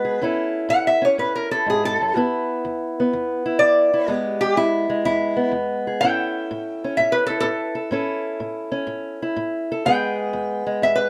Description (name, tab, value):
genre	acoustic country blues, solo or duo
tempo	125 BPM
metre	4/4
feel	swing 67% on 8ths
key	E major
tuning	A4 = 440 Hz
part	lap resonator guitar	melody	0.0-11.1 s	E4 to G5	-22 LUFS	equal	none
part	fingerpicked acoustic archtop guitar	accompaniment	0.0-11.1 s	E2 to A4	-26 LUFS	equal	none
room	light reverb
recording	close, detailed microphones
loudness	-22 LUFS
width	mono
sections	0.0-11.1 A section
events	resonator guitar played with a steel bar solo 0.0-11.1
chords	0.2 A; 2.2 E; 6.0 A; 9.9 E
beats	| 0.24 0.72 1.20 1.68 | 2.17 2.65 3.13 3.61 | 4.09 4.57 5.05 5.54 | 6.02 6.50 6.98 7.46 | 7.94 8.42 8.89 9.37 | 9.85 10.33 10.81